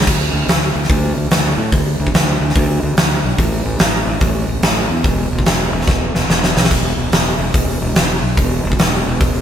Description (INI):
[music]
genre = blues rock power trio and southern rock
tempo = 144 BPM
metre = 4/4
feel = swing 65% on 8ths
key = unclear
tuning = A4 = 440 Hz
[part]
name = fuzz fingered electric bass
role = bass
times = 0.0-9.4 s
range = E1 to A2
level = -18 LUFS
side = equal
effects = overdrive
[part]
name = big rock drum kit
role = drums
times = 0.0-9.3 s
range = crash cymbal, hi-hat, kick drum, snare drum, splash cymbal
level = -15 LUFS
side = equal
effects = none
[sound]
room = moderate studio reverb, RT60 0.7 s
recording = band playing live in one room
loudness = -13 LUFS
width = side -9 dB against mid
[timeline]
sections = 0.0-9.4 A section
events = drum fill 5.9-6.7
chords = none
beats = | 0.07 0.48 0.90 1.31 | 1.72 2.14 2.55 2.97 | 3.38 3.80 4.21 4.63 | 5.04 5.46 5.88 6.29 | 6.71 7.12 7.54 7.96 | 8.37 8.79 9.21